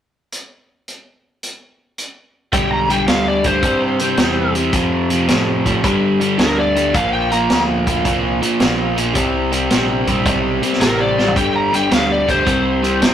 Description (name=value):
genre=blues rock power trio and southern rock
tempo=109 BPM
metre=4/4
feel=swing 67% on 8ths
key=unclear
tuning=A4 = 440 Hz
part: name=vintage drum kit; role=drums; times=0.3-13.1 s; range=hi-hat, kick drum, snare drum, toms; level=-20 LUFS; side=equal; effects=none
part: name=overdriven slide guitar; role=melody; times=2.5-13.1 s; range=Bb4 to Bb5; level=-19 LUFS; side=left 1 dB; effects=none
part: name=crunchy overdriven guitar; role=riff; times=2.5-13.1 s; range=F2 to C4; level=-17 LUFS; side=equal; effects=none
part: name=growling picked electric bass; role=bass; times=2.5-13.1 s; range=G1 to A2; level=-24 LUFS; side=equal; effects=overdrive
room=moderate studio reverb, RT60 0.5 s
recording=rough rehearsal-room recording, tube saturation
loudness=-14 LUFS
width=side -9 dB against mid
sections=0.3-2.5 A section; 2.5-13.1 B section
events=drum fill 11.1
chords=0.3 N.C.; 2.5 G; 3.6 C; 4.7 F; 5.8 G5; 6.9 Bb; 9.2 C5; 11.4 G5; 12.5 C5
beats=| 0.32 0.87 1.43 1.98 | 2.53 3.08 3.63 4.19 | 4.74 5.29 5.84 6.39 | 6.95 7.50 8.05 8.60 | 9.15 9.71 10.26 10.81 | 11.36 11.92 12.47 13.02